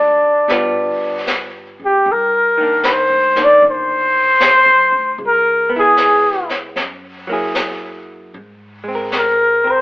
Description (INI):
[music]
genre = jazz ballad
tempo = 76 BPM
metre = 4/4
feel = swing 67% on 8ths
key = unclear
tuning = A4 = 440 Hz
[part]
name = mellow trumpet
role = melody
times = 0.0-9.8 s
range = D4 to D5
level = -11 LUFS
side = equal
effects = none
[part]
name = hollow-body jazz guitar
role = accompaniment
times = 0.0-9.8 s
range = D3 to Bb4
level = -22 LUFS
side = right 1 dB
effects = none
[part]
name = upright bass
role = bass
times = 0.0-9.8 s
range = G1 to Ab2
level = -37 LUFS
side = equal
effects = none
[part]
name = vintage brush drum kit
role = drums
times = 0.5-9.8 s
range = brushed snare drum, hi-hat, snare drum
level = -21 LUFS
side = left 1 dB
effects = none
[sound]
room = moderate stone room reverb, RT60 1.1 s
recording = band playing live in one room, telephone sound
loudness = -12 LUFS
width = side -19 dB against mid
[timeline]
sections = 0.0-9.8 A section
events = none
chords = 0.5 G7; 2.1 Cm9; 5.2 Dbm7; 6.8 Gb9; 8.3 Abadd9